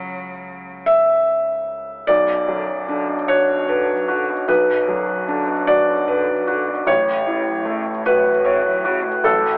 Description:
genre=neoclassical piano and strings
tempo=50 BPM (dotted quarters)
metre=6/8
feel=rubato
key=unclear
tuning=A4 = 440 Hz
part: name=warm cello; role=second line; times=0.0-9.6 s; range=F#2 to F#3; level=-33 LUFS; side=equal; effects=none
part: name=felt-muted upright piano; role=accompaniment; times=0.0-9.6 s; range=A1 to E5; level=-19 LUFS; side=equal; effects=none
part: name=pure sine sub bass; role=bass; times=0.0-2.0 s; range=C#2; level=-54 LUFS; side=equal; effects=none
room=light reverb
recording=telephone sound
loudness=-19 LUFS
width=mono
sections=0.0-2.1 A section; 2.1-9.6 B section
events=none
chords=0.0 F#7(no3)/C#; 2.1 Bm; 6.9 F#m/A

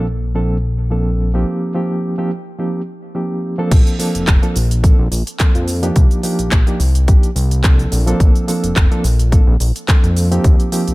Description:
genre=nu-disco, nu disco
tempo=107 BPM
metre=4/4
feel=swing 55% on 16ths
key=Bb major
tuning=A4 = 440 Hz
part: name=reed electric piano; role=accompaniment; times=0.0-10.9 s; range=F3 to A4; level=-20 LUFS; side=right 1 dB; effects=overdrive, fast tremolo, sidechain pumping, dub echo
part: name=fat analog bass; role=bass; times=0.0-10.9 s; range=F1 to F2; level=-16 LUFS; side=equal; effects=none
part: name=electronic kick drum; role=drums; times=3.7-10.6 s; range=none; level=-11 LUFS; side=equal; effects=none
part: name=house drum kit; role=drums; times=3.7-10.9 s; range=crash cymbal, handclaps, hi-hat, shaker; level=-23 LUFS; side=equal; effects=low-pass filter on hats, low-pass filter on cymbals, low-pass filter on perc, low-pass filter on snare
room=little or no reverb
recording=none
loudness=-13 LUFS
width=side -21 dB against mid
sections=0.0-3.7 A section; 3.7-10.9 B section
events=break 1.5-3.7; drop 3.7-10.9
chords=0.0 Bbmaj9; 1.5 Eb69; 6.0 Cm11; 7.9 Bbmaj9

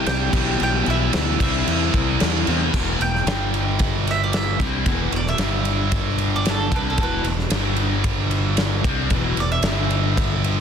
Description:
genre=hard rock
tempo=113 BPM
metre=4/4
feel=straight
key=E minor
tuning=A4 = 440 Hz
part: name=mandolin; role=melody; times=0.0-10.6 s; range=A4 to G5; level=-27 LUFS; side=right 4 dB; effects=analog delay
part: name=smooth overdriven lead guitar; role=second line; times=0.0-2.4 s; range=E4 to G4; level=-29 LUFS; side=left 1 dB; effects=plate reverb
part: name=crunchy overdriven guitar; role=riff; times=0.0-10.6 s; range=E2 to C4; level=-28 LUFS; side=left 13 dB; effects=none
part: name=crunchy overdriven guitar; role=riff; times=0.0-2.7 s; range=B2 to E4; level=-29 LUFS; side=left 1 dB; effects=none
part: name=high-gain distorted guitar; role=riff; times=0.0-10.6 s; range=E2 to C4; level=-27 LUFS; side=right 13 dB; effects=distortion
part: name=fuzz fingered electric bass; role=bass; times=0.1-10.6 s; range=E1 to E2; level=-23 LUFS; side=equal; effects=overdrive
part: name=big rock drum kit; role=drums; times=0.1-10.6 s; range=crash cymbal, kick drum, ride cymbal, snare drum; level=-23 LUFS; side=equal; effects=none
room=light reverb, small room ambience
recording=dense, heavily limited modern master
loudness=-18 LUFS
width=side -7 dB against mid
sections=0.0-2.7 A section; 2.7-10.6 B section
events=mandolin solo 2.7-10.6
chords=0.3 Em/B; 1.4 C; 2.7 Em; 3.3 G5; 4.6 Em; 5.4 G5; 6.7 Em; 7.5 G5; 8.9 Em; 9.7 G5

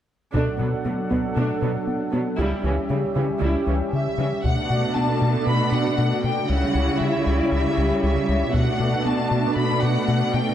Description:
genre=cinematic, hybrid orchestral and electronic film score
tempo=117 BPM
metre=4/4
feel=straight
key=B minor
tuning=A4 = 445 Hz
part: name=warm symphonic viola section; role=accompaniment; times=0.3-10.5 s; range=C#3 to E4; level=-28 LUFS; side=right 1 dB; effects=none
part: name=brassy analog pad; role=sustained chords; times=0.3-10.5 s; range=F#3 to F#5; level=-26 LUFS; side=right 1 dB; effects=chorus
part: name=rubbery square bass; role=riff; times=0.3-10.5 s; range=C#2 to B3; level=-24 LUFS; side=left 1 dB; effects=none
part: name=rich symphonic cello section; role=bass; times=0.3-10.5 s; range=B2 to C#3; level=-27 LUFS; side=right 3 dB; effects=none
part: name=solo taiko drums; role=drums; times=0.3-1.3, 4.4-5.4, 8.5-9.5 s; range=none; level=-29 LUFS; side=equal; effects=none
part: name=warm symphonic violin section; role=melody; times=3.9-10.5 s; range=D5 to B5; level=-27 LUFS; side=left 3 dB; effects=none
room=moderate concert hall reverb, RT60 2.4 s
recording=none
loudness=-20 LUFS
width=side -10 dB against mid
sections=0.3-4.4 A section; 4.4-10.5 B section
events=none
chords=0.3 Bm7; 2.4 C#dim; 4.4 Bm7; 6.5 C#dim; 8.5 Bm7

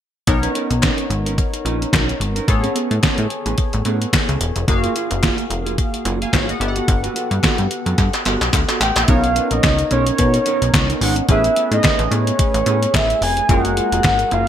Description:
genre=early-eighties boogie funk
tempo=109 BPM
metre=4/4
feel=swing 56% on 16ths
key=B lydian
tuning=A4 = 435 Hz
part: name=funky polysynth comp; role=accompaniment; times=0.3-14.5 s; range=G#3 to G#5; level=-24 LUFS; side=left 2 dB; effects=chorus
part: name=mellow electric guitar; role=riff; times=0.3-14.5 s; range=A#3 to B4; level=-26 LUFS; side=right 7 dB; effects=lush chorus
part: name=plucky analog bass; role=bass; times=0.3-14.5 s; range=E1 to B2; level=-20 LUFS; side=equal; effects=none
part: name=detuned 8-bit digital drum machine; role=drums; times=0.3-14.5 s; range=handclaps, hi-hat, kick drum, snare drum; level=-18 LUFS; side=equal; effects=overdrive
part: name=group handclap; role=percussion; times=0.8-14.2 s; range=none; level=-28 LUFS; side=left 6 dB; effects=none
part: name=soft octave-layered synth lead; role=melody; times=8.8-14.5 s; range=C#5 to G#5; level=-19 LUFS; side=right 1 dB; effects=chorus, ping-pong delay
part: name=lush unison pad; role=sustained chords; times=9.8-14.5 s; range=F#3 to A#4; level=-29 LUFS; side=equal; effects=none
room=light reverb, digital ambience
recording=bright 1980s-style digital production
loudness=-15 LUFS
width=side -10 dB against mid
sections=0.3-9.1 A section; 9.1-14.5 B section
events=drum fill 8.0-9.1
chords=0.3 Bmaj9; 2.5 Amaj9; 4.7 F#maj9; 6.6 Gmaj9; 9.1 Bmaj9; 11.3 Amaj9; 13.5 F#maj9

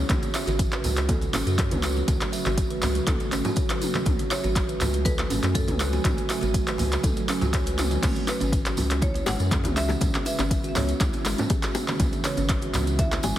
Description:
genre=afro house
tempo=121 BPM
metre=4/4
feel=straight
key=unclear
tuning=A4 = 440 Hz
part: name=ethereal airy pad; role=sustained chords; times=0.0-13.4 s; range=C#3 to G#5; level=-34 LUFS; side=right 2 dB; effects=ensemble chorus, built-in reverb, phaser, sidechain pumping
part: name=round analog bass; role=bass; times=0.0-13.3 s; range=G#1 to F#2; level=-28 LUFS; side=equal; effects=sidechain pumping
part: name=kalimba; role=arpeggios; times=0.1-13.4 s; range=G#3 to E5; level=-30 LUFS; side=right 2 dB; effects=sidechain pumping, ping-pong delay
part: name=deep house drum kit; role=drums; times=0.1-13.3 s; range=crash cymbal, handclaps, hi-hat, toms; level=-29 LUFS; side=equal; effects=overdrive, studio reverb
part: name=electronic kick drum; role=drums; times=0.1-13.1 s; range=none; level=-26 LUFS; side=equal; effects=overdrive, studio reverb
part: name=congas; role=percussion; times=0.1-13.3 s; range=none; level=-33 LUFS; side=right 2 dB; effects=none
part: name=tambourine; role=percussion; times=0.1-13.4 s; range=none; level=-38 LUFS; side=right 3 dB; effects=none
part: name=marimba with hard mallets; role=melody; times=4.3-13.4 s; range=F#4 to G#5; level=-34 LUFS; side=equal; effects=ping-pong delay
part: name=bongos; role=percussion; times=8.3-13.3 s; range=none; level=-34 LUFS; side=left 6 dB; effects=none
room=light reverb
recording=heavily compressed radio sound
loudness=-22 LUFS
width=side -12 dB against mid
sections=0.0-13.4 A section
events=none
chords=0.1 F#m; 8.0 C#m7

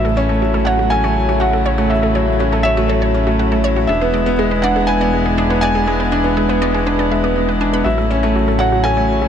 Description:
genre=piano and strings electronica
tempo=121 BPM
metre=4/4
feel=straight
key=A major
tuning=A4 = 440 Hz
part: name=felt-muted upright piano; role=melody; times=0.0-9.3 s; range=C#5 to G#5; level=-20 LUFS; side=right 1 dB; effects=ping-pong delay
part: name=rich string quartet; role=sustained chords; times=0.0-9.3 s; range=C#3 to E4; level=-23 LUFS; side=equal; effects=stereo widening
part: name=wide unison pluck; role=arpeggios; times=0.0-9.3 s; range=F#4 to B5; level=-25 LUFS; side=right 2 dB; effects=cassette tape, ping-pong delay
part: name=felt-muted upright piano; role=riff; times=0.0-9.3 s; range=F#3 to D4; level=-17 LUFS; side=left 1 dB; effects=ping-pong delay
part: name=dark detuned saw bass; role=bass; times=0.0-9.3 s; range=E1 to A1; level=-20 LUFS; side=equal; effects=none
room=light reverb, studio ambience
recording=none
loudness=-13 LUFS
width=side -8 dB against mid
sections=0.0-9.3 A section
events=none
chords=0.0 A6; 3.9 E7; 7.9 A6

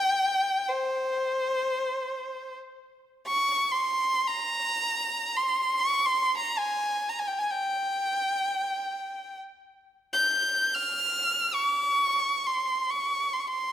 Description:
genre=Arabic maqam ensemble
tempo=free time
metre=none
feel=none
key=C maqam hijaz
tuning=A4 = 441 Hz
part: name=clear violin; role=solo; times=0.0-13.7 s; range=C5 to G6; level=-25 LUFS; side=equal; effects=none
room=moderate scoring stage reverb, RT60 2.0 s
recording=none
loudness=-25 LUFS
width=side -11 dB against mid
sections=0.0-2.9 A section; 2.9-13.7 A section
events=none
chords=none

